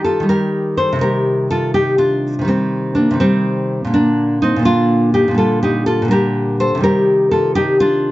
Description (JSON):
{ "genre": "classical, baroque-style dance for nylon-string guitar", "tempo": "83 BPM (dotted quarters)", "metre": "12/8", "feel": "rubato", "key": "unclear", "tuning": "A4 = 441 Hz", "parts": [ { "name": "nylon-string guitar", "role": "solo", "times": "0.0-8.1 s", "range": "Bb2 to C5", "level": "-13 LUFS", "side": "equal", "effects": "none" } ], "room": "moderate studio reverb, RT60 0.7 s", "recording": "nothing above 7.8 kHz", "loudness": "-13 LUFS", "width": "side -16 dB against mid", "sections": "0.0-8.1 A section", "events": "none", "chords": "0.0 Eb; 1.0 Cm; 3.9 Bb; 5.4 Gm/Bb; 6.8 Cm" }